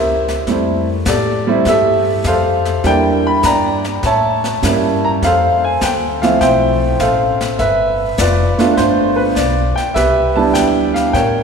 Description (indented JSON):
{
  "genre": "jazz piano trio",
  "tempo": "101 BPM",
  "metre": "4/4",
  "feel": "swing 69% on 8ths",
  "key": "C major",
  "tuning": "A4 = 440 Hz",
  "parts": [
    { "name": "warm baby grand piano", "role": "melody", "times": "0.0-11.4 s", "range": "F3 to B5", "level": "-13 LUFS", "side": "right 1 dB", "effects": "none" },
    { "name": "upright bass", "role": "bass", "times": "0.0-11.4 s", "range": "F1 to A2", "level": "-21 LUFS", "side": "left 1 dB", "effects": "none" },
    { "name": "jazz brush drum kit", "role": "drums", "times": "0.3-11.4 s", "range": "brushed snare drum, hi-hat, kick drum, snare drum", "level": "-24 LUFS", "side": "left 2 dB", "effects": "none" }
  ],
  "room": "wet church reverb, RT60 3.7 s",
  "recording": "recorded in a church or concert hall",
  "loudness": "-12 LUFS",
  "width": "side -6 dB against mid",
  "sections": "0.0-11.4 A section",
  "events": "none",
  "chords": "0.5 Fmaj9; 2.9 Em7b5; 4.0 A7b9; 5.2 Dm9; 7.6 G7; 10.0 Cmaj9"
}